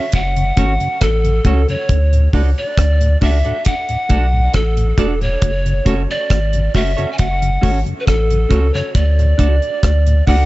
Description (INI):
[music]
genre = roots reggae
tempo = 68 BPM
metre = 4/4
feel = straight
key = F# minor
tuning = A4 = 439 Hz
[part]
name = breathy bright pan flute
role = melody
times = 0.0-10.5 s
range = A4 to G#5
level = -20 LUFS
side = equal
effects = dub echo
[part]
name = semi-hollow electric guitar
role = accompaniment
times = 0.0-10.4 s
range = C#4 to D5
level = -26 LUFS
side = right 5 dB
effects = lush chorus, dub echo
[part]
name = warm sub bass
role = bass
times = 0.1-10.5 s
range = E1 to D2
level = -15 LUFS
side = equal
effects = none
[part]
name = deep reggae drum kit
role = drums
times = 0.1-10.5 s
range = hi-hat, kick drum, rim click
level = -16 LUFS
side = equal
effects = analog delay
[part]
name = mellow tonewheel organ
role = accompaniment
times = 0.4-10.4 s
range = D2 to F#4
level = -24 LUFS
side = left 1 dB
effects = slow rotary speaker, analog delay
[sound]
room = light reverb, studio ambience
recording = echo-heavy mix, nothing above 7.9 kHz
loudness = -13 LUFS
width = side -18 dB against mid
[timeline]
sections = 0.0-10.5 A section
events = none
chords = 0.0 F#m; 1.9 D; 5.4 F#m; 9.0 D